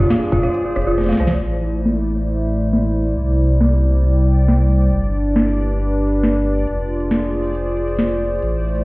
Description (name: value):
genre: IDM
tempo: 137 BPM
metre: 4/4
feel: straight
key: unclear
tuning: A4 = 436 Hz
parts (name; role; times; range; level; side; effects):
- hollow soft pad; sustained chords; 0.0-8.8 s; A2 to G5; -21 LUFS; equal; chorus
- dark detuned synth bell; arpeggios; 0.0-1.4 s; F4 to F5; -21 LUFS; right 1 dB; chorus, ping-pong delay
- warm sub bass; bass; 0.0-8.8 s; F1 to C2; -18 LUFS; equal; tube saturation
- bubbling stepped-filter texture; texture; 0.0-8.8 s; D5; -28 LUFS; left 1 dB; chorus, built-in reverb
- booming analog drum machine; drums; 0.1-8.8 s; hi-hat, rim click, snare drum; -20 LUFS; equal; low-pass filter on snare, low-pass filter on hats, ping-pong delay
room: light reverb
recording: heard muffled through a wall, stone room reverb, EQ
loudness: -15 LUFS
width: side -22 dB against mid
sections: 0.0-1.4 A section; 1.4-8.8 B section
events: drum fill 1.0-1.4; band accent 1.3; filter sweep on drum 1.4-8.8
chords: 0.0 Fm; 1.4 Am; 3.2 C; 4.9 G; 6.7 Fm